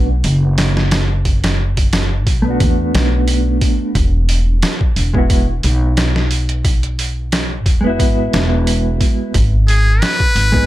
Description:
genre	trip hop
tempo	89 BPM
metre	4/4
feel	swing 54% on 16ths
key	unclear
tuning	A4 = 438 Hz
part	mellow electric guitar	accompaniment	0.0-10.7 s	G#3 to G#4	-19 LUFS	right 1 dB	tremolo, low-pass filter, tape echo
part	upright bass	bass	0.0-10.7 s	E1 to E2	-15 LUFS	equal	tube saturation
part	trip hop sampler-style drum kit	drums	0.2-10.7 s	hi-hat, kick drum, snare drum	-16 LUFS	equal	none
part	trumpet with metal mute	melody	9.7-10.7 s	G#4 to B4	-16 LUFS	left 1 dB	none
room	digital ambience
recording	none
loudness	-13 LUFS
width	side -15 dB against mid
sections	0.0-10.7 A section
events	filter sweep on clean electric guitar 0.0-10.7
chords	0.0 Bm7; 3.9 Eadd9; 9.3 G#m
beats	0.58 | 1.25 1.93 2.60 3.27 | 3.95 4.62 5.30 5.97 | 6.65 7.32 7.99 8.67 | 9.34 10.02

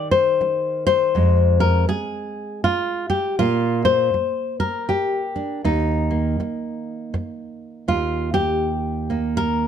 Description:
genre	folk, solo fingerstyle acoustic guitar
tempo	80 BPM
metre	3/4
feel	swing 62% on 8ths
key	Eb major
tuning	A4 = 441 Hz
part	nylon-string guitar	solo	0.0-9.7 s	Eb2 to D5	-19 LUFS	left 1 dB	none
room	little or no reverb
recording	close, detailed microphones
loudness	-19 LUFS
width	side -8 dB against mid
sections	0.0-7.9 A section; 7.9-9.7 B section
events	none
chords	0.0 Cm; 1.2 Fm; 3.4 Bb5; 5.6 Eb5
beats	0.41 | 1.15 1.90 2.65 | 3.39 4.14 4.89 | 5.63 6.38 7.13 | 7.88 8.63 9.38

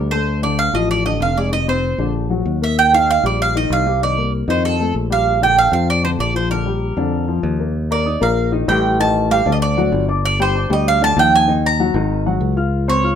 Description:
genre	Afro-Cuban jazz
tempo	193 BPM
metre	4/4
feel	straight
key	Bb major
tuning	A4 = 436 Hz
part	dark upright piano	accompaniment	0.0-13.2 s	D3 to F6	-21 LUFS	left 5 dB	none
part	fingered electric bass	bass	0.0-13.1 s	F1 to F2	-19 LUFS	equal	none
part	mandolin	melody	0.1-13.2 s	A4 to Bb5	-17 LUFS	right 4 dB	none
room	moderate studio reverb, RT60 0.8 s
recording	minimal, uncompressed stereo recording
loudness	-14 LUFS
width	side -8 dB against mid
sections	0.0-7.8 A section; 7.8-13.2 B section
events	none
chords	0.3 Dm; 1.5 F7sus4; 2.1 Bbaug; 2.8 Ebadd9; 4.0 Cm9; 4.6 F9; 5.3 Bb6; 7.8 Ebmaj7; 9.0 F13/A; 9.6 D; 10.2 G7sus4; 11.5 Ebm; 12.1 Absus2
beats	| 0.27 0.59 0.90 1.21 | 1.52 1.83 2.15 2.46 | 2.77 3.08 3.39 3.70 | 4.01 4.33 4.64 4.95 | 5.26 5.57 5.88 6.19 | 6.50 6.82 7.13 7.44 | 7.75 8.06 8.37 8.68 | 8.99 9.31 9.62 9.93 | 10.24 10.55 10.86 11.17 | 11.48 11.80 12.11 12.42 | 12.73 13.04

